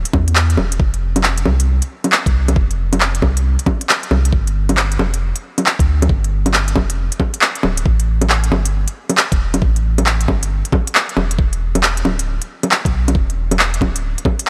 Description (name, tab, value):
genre	future garage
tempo	136 BPM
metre	4/4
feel	swing 64% on 16ths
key	A minor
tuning	A4 = 439 Hz
part	soft dub sub bass	bass	0.0-14.2 s	D1 to E2	-19 LUFS	equal	sidechain pumping
part	electronic kick drum	drums	0.1-14.4 s	none	-19 LUFS	equal	small room ambience
part	organic electronic drum kit	drums	0.1-14.5 s	bongos, handclaps, hi-hat	-19 LUFS	equal	overdrive, small room ambience
room	digital ambience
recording	dry, gritty hardware recording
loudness	-16 LUFS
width	mono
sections	0.0-14.5 A section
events	none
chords	none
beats	0.36 | 0.80 1.24 1.68 2.12 | 2.56 3.01 3.45 3.89 | 4.33 4.77 5.21 5.65 | 6.09 6.54 6.98 7.42 | 7.86 8.30 8.74 9.18 | 9.62 10.06 10.51 10.95 | 11.39 11.83 12.27 12.71 | 13.15 13.59 14.04